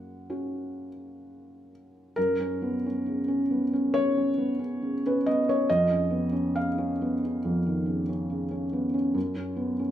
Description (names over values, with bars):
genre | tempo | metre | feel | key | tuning
neoclassical minimalist piano | 69 BPM | 4/4 | rubato | F# major | A4 = 440 Hz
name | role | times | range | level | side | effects
felt-muted upright piano | solo | 0.0-9.9 s | E#2 to F#5 | -25 LUFS | equal | none
room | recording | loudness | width
wet large studio reverb, RT60 0.9 s | band playing live in one room | -25 LUFS | side -11 dB against mid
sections
0.0-2.2 A section; 2.2-9.9 B section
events
none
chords
0.0 F#; 5.7 C#add9/E#; 9.2 F#5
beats
0.29 1.23 | 2.17 3.06 3.93 4.80 | 5.67 6.55 7.42 8.29 | 9.15